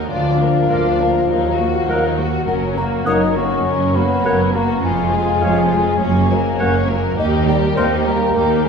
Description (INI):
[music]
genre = cinematic, playful, whimsical film cue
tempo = 102 BPM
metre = 4/4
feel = straight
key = unclear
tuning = A4 = 439 Hz
[part]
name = muted studio violin section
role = melody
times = 0.0-8.7 s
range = F4 to D5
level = -25 LUFS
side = left 4 dB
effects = none
[part]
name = muted chamber violin section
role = second line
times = 0.0-8.6 s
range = Bb3 to G4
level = -27 LUFS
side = left 3 dB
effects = none
[part]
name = muted studio viola section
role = accompaniment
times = 0.0-8.7 s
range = F3 to D4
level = -24 LUFS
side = right 1 dB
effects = none
[part]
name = muted chamber cello section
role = bass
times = 0.0-8.7 s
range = D2 to Gb2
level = -22 LUFS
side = right 2 dB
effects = none
[part]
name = muted chamber double bass section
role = bass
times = 0.0-8.7 s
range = F1 to Eb2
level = -22 LUFS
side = right 2 dB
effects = none
[part]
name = mellow baroque flute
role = second line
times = 0.1-8.7 s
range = Eb5 to Eb6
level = -22 LUFS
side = left 4 dB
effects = none
[part]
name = mellow French horn section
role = sustained chords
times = 0.1-8.7 s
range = Eb3 to Eb4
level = -21 LUFS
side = left 1 dB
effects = none
[part]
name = bright clarinet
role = second line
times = 0.7-7.9 s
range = Bb4 to Db5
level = -31 LUFS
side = equal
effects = none
[part]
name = mellow oboe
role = second line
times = 0.7-7.9 s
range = F5 to G5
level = -30 LUFS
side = right 1 dB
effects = none
[part]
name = mellow bassoon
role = accompaniment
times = 0.7-8.0 s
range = Ab3 to Bb3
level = -27 LUFS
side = equal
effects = none
[sound]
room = wet scoring stage reverb, RT60 1.8 s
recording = heard from further back in the room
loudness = -14 LUFS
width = side -6 dB against mid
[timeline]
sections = 0.0-8.7 A section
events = none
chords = 0.1 Bb/D; 1.3 Ebm; 2.5 Gb; 4.8 Db/F; 6.0 Gb; 7.2 Eb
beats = | 0.11 0.70 1.30 1.89 | 2.48 3.07 3.66 4.25 | 4.84 5.43 6.02 6.60 | 7.18 7.77 8.35